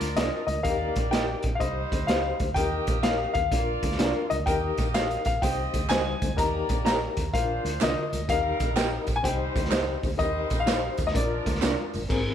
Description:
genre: uptempo 1960s-style soul.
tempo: 126 BPM.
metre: 4/4.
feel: swing 66% on 8ths.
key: Eb major.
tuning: A4 = 439 Hz.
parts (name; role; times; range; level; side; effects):
clear concert grand piano; melody; 0.0-11.6 s; D5 to Bb5; -29 LUFS; left 3 dB; none.
clear horn section; second line; 0.0-11.9 s; F3 to Eb5; -36 LUFS; right 1 dB; none.
bright reed electric piano; accompaniment; 0.0-12.3 s; D3 to C5; -32 LUFS; left 5 dB; overdrive, fast tremolo, tube saturation.
vintage muted fingered electric bass; bass; 0.0-12.3 s; Gb1 to Eb2; -32 LUFS; right 1 dB; none.
raw garage drum kit; drums; 0.0-12.2 s; crash cymbal, hi-hat, kick drum, snare drum; -29 LUFS; equal; none.
congas; percussion; 0.0-12.0 s; none; -41 LUFS; right 2 dB; none.
electric guitar through a small old amp; stabs; 0.2-11.7 s; D4 to Eb5; -33 LUFS; right 8 dB; none.
tambourine and handclaps; percussion; 4.5-12.2 s; none; -40 LUFS; right 9 dB; none.
room: light reverb.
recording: none.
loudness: -24 LUFS.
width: side -9 dB against mid.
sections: 0.0-12.1 A section.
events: none.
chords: 0.0 Bb; 0.7 Eb; 1.6 Cm; 2.6 Eb; 3.5 Bb; 4.5 Eb; 5.4 Cm; 6.4 Eb; 7.3 Bb; 8.3 Eb; 9.2 Cm; 10.2 Eb; 11.1 Bb.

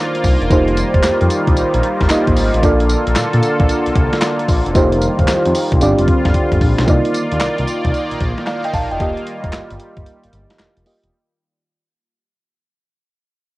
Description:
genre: R&B, new jack swing.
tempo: 113 BPM.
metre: 4/4.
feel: swing 65% on 16ths.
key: unclear.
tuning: A4 = 441 Hz.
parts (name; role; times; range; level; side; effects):
mellow FM electric piano; accompaniment; 0.0-11.1 s; Bb3 to A5; -18 LUFS; right 1 dB; chorus, cassette tape.
sweeping resonant pad; sustained chords; 0.0-11.1 s; D3 to D5; -20 LUFS; left 1 dB; chorus, cassette tape.
clean 12-bit digital drum machine; drums; 0.1-11.1 s; handclaps, hi-hat, kick drum, snare drum, tambourine; -18 LUFS; equal; cassette tape.
smooth gliding synth bass; bass; 0.2-11.1 s; E1 to Bb2; -18 LUFS; equal; none.
room: little or no reverb.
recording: home recording on cassette.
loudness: -13 LUFS.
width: side -19 dB against mid.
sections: 0.0-6.9 A section; 6.9-11.1 B section.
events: drum fill 6.3-6.9; fade-out 6.9-11.1; break 10.1-11.1.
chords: 0.0 Cm11; 0.5 F9sus4; 2.6 Bbmaj7; 4.8 F9sus4; 5.8 G7sus4; 6.9 Cm11; 9.0 F9sus4.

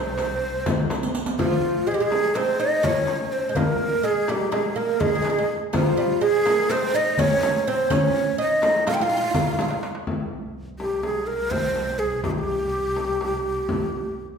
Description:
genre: Turkish makam ensemble.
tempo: 249 BPM (eighths).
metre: 9/8.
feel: straight.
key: F makam nihavent.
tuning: A4 = 438 Hz.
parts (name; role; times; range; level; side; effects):
breathy ney; melody; 0.0-14.2 s; F4 to G5; -23 LUFS; equal; none.
dark double bass; drone; 0.0-1.4, 10.1-14.4 s; C2; -35 LUFS; equal; none.
darbuka; percussion; 0.2-10.1 s; none; -31 LUFS; left 2 dB; none.
frame drum; percussion; 0.2-13.8 s; none; -28 LUFS; left 2 dB; none.
riq; percussion; 0.2-1.4, 5.7-9.9 s; none; -34 LUFS; right 3 dB; none.
oud; second line; 1.4-9.8 s; F3 to F4; -26 LUFS; right 4 dB; none.
room: wet recital hall reverb, RT60 1.3 s.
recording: recorded in a church or concert hall.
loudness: -20 LUFS.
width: side -6 dB against mid.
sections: 0.0-1.4 A section; 1.4-10.1 B section; 10.1-14.4 C section.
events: drum fill 0.9-1.4, 9.6-10.1.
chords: none.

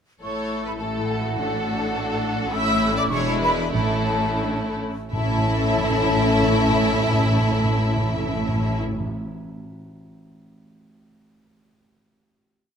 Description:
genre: quick classical-period movement for symphony orchestra.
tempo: 82-105 BPM.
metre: 2/4.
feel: straight.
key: A major.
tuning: A4 = 439 Hz.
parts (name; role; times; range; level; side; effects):
rich chamber violin section; melody; 0.2-8.8 s; E4 to A4; -29 LUFS; left 3 dB; none.
flute section; second line; 0.2-8.8 s; F#5 to E6; -28 LUFS; left 1 dB; none.
rich chamber violin section; second line; 0.2-8.8 s; F#4 to E5; -30 LUFS; equal; none.
warm chamber viola section; accompaniment; 0.2-8.8 s; G#3 to E4; -28 LUFS; right 2 dB; none.
mellow French horn section; sustained chords; 0.2-8.8 s; G#3 to E4; -28 LUFS; left 5 dB; none.
warm chamber double bass section; bass; 0.2-8.8 s; E1 to A1; -28 LUFS; right 2 dB; none.
warm studio cello section; bass; 0.2-8.8 s; E2 to A2; -29 LUFS; right 2 dB; none.
timpani; percussion; 1.4-9.1 s; A2; -27 LUFS; equal; none.
room: moderate scoring stage reverb, RT60 1.8 s.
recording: none.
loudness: -20 LUFS.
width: side -7 dB against mid.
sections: 0.2-5.1 A section; 5.1-8.0 final chord.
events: slowing down 1.9-5.1.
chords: 0.2 A5; 1.4 D/A; 2.5 A; 3.1 E7; 3.7 A.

